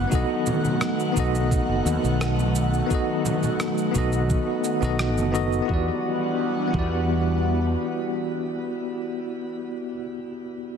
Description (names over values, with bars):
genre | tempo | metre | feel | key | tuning
sunset chillout | 86 BPM | 4/4 | straight | E minor | A4 = 438 Hz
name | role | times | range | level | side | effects
airy breathy pad | sustained chords | 0.0-9.2 s | D#3 to F#5 | -28 LUFS | equal | chorus, phaser, vintage 12-bit sampler grit, shimmer reverb
mellow fretless electric bass | bass | 0.0-7.7 s | F#1 to E2 | -24 LUFS | equal | wide subtle chorus
bell-like tine electric piano | accompaniment | 0.1-10.8 s | B3 to D#5 | -26 LUFS | left 1 dB | medium stereo tremolo, auto-pan, ping-pong delay, shimmer reverb
electronic kick drum | drums | 0.1-7.0 s | none | -26 LUFS | equal | studio ambience
electronic shaker and rim click | drums | 0.1-5.7 s | none | -32 LUFS | right 2 dB | overdrive, studio ambience
congas | percussion | 0.5-5.3 s | none | -30 LUFS | right 2 dB | none
room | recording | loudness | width
moderate lush hall reverb, RT60 2.3 s | heavily compressed radio sound | -22 LUFS | side -7 dB against mid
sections
0.0-5.7 A section; 5.7-8.5 B section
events
none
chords
0.0 B7; 5.7 Em9